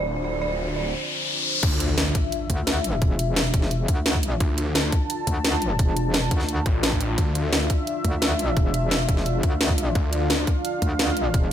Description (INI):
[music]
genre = dark technical drum and bass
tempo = 173 BPM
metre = 4/4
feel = straight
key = D minor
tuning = A4 = 444 Hz
[part]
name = dark analog pad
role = sustained chords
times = 0.0-11.5 s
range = D4 to A5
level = -28 LUFS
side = equal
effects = chorus, sidechain pumping
[part]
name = snarling distorted saw bass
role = bass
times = 0.0-2.1, 4.4-7.7, 10.0-10.5 s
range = D1 to D2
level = -25 LUFS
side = equal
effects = distortion, tube saturation, sidechain pumping
[part]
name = riser and impact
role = sound effects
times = 0.0-3.0 s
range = none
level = -28 LUFS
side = left 2 dB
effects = none
[part]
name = dark detuned synth bell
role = arpeggios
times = 0.2-0.9 s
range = D5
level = -29 LUFS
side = right 4 dB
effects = chorus, tremolo, sidechain pumping, ping-pong delay
[part]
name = drum and bass drum kit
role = drums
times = 1.6-11.4 s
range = crash cymbal, hi-hat, snare drum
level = -25 LUFS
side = equal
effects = overdrive, studio reverb
[part]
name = electronic kick drum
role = drums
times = 1.6-11.4 s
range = none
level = -22 LUFS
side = equal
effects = overdrive, studio reverb
[part]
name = metallic wobble bass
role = bass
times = 2.5-11.5 s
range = E1 to D2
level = -25 LUFS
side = equal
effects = chorus
[sound]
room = light reverb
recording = none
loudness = -20 LUFS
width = side -10 dB against mid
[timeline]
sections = 0.0-1.6 A section; 1.6-11.5 B section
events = riser 0.0-1.6; drop 1.6-11.5; impact 1.6-3.0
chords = 0.0 Dm; 1.6 Dmadd9